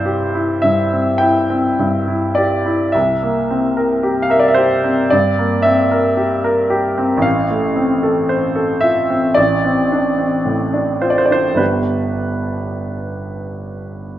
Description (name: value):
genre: classical, romantic nocturne for solo piano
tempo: 51-58 BPM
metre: 4/4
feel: rubato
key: C major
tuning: A4 = 440 Hz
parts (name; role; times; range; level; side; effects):
- clear upright piano; solo; 0.0-14.2 s; G1 to G5; -14 LUFS; equal; none
room: moderate recital hall reverb, RT60 1.5 s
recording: nothing above 7.6 kHz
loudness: -14 LUFS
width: side -12 dB against mid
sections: 0.0-14.2 A section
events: none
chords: 0.0 C; 2.9 C7; 7.3 F/A; 9.4 Dm7/A; 11.6 G